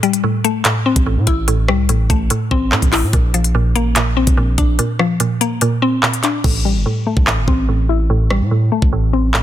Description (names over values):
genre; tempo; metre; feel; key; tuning
hip hop, drill; 145 BPM; 4/4; half-time; A phrygian; A4 = 440 Hz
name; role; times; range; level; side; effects
mallet-like synth pluck; accompaniment; 0.0-9.4 s; A2 to E4; -17 LUFS; left 1 dB; chorus, low-pass filter
drill drum kit; drums; 0.0-9.4 s; crash cymbal, handclaps, hi-hat, kick drum, rim click; -17 LUFS; equal; none
long sustained 808-style bass; bass; 1.0-9.4 s; G1 to A2; -17 LUFS; equal; none
room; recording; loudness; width
little or no reverb; dense, heavily limited modern master; -13 LUFS; side -12 dB against mid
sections
0.0-6.4 A section; 6.4-9.4 B section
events
break 0.0-0.7; kick muted 4.8-6.4; hi-hats muted 6.4-9.4; filter sweep on synth pluck 6.4-9.4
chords
0.0 Am7; 3.1 Bbadd9; 6.4 Am7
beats
0.24 0.65 1.06 | 1.48 1.89 2.31 2.72 | 3.13 3.55 3.96 4.37 | 4.79 5.20 5.62 6.03 | 6.44 6.86 7.27 7.68 | 8.10 8.51 8.93 9.34